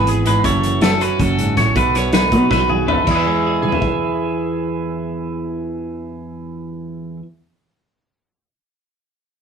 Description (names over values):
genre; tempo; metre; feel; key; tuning
math rock and midwest emo; 320 BPM (eighths); 7/8; straight; E major; A4 = 444 Hz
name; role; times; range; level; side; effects
twelve-string electric guitar; accompaniment; 0.0-7.3 s; E2 to E5; -20 LUFS; right 2 dB; none
twangy electric guitar; arpeggios; 0.0-7.2 s; E4 to E5; -20 LUFS; left 1 dB; none
fingered electric bass; bass; 0.0-7.2 s; F#1 to B2; -22 LUFS; equal; none
loose indie drum kit; drums; 0.1-3.9 s; crash cymbal, hi-hat, kick drum, snare drum, toms; -20 LUFS; equal; none
room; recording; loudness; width
wet small room reverb, RT60 0.5 s; rough rehearsal-room recording; -15 LUFS; side -6 dB against mid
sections
0.0-3.1 A section; 3.1-5.7 B section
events
drum fill 2.5-3.1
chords
0.5 F#m7; 1.8 B7; 3.1 E